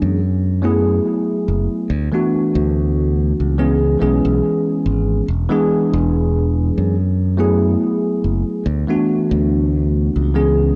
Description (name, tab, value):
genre	vaporwave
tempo	71 BPM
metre	4/4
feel	swing 55% on 16ths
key	F# minor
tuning	A4 = 440 Hz
part	bell-like tine electric piano	accompaniment	0.0-10.7 s	E3 to G#4	-20 LUFS	equal	analog chorus, analog delay
part	modern bright fingered electric bass	bass	0.0-10.7 s	E1 to F#2	-20 LUFS	equal	none
room	light reverb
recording	cassette tape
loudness	-17 LUFS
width	mono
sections	0.0-10.8 A section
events	none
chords	0.2 F#m11; 1.9 D69; 3.6 C#m7; 5.3 E7; 7.0 F#m11; 8.7 D69